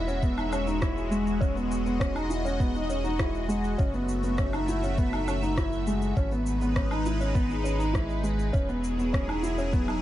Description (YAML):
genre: piano and strings electronica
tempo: 101 BPM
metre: 4/4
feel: straight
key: E major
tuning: A4 = 439 Hz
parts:
  - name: lush unison pad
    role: sustained chords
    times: 0.0-10.0 s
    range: F#3 to E5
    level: -33 LUFS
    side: left 1 dB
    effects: chorus, phaser, sidechain pumping
  - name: felt-muted upright piano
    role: riff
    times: 0.0-10.0 s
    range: G#3 to E4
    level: -29 LUFS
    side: equal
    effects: ping-pong delay
  - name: round analog bass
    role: bass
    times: 0.0-10.0 s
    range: E1 to G#1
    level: -31 LUFS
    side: equal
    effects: sidechain pumping
  - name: electronic shaker, woodblock and rim click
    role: drums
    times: 0.1-10.0 s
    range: none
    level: -39 LUFS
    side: equal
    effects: none
  - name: electronic kick drum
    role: drums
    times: 0.2-9.9 s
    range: none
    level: -28 LUFS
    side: equal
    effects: overdrive
room: light reverb, digital ambience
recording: dark, warm production, nothing above 10.8 kHz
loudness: -25 LUFS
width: side -13 dB against mid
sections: 0.0-10.0 A section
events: none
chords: 0.0 Eadd9; 3.8 F#m7; 6.2 G#m; 8.5 Eadd9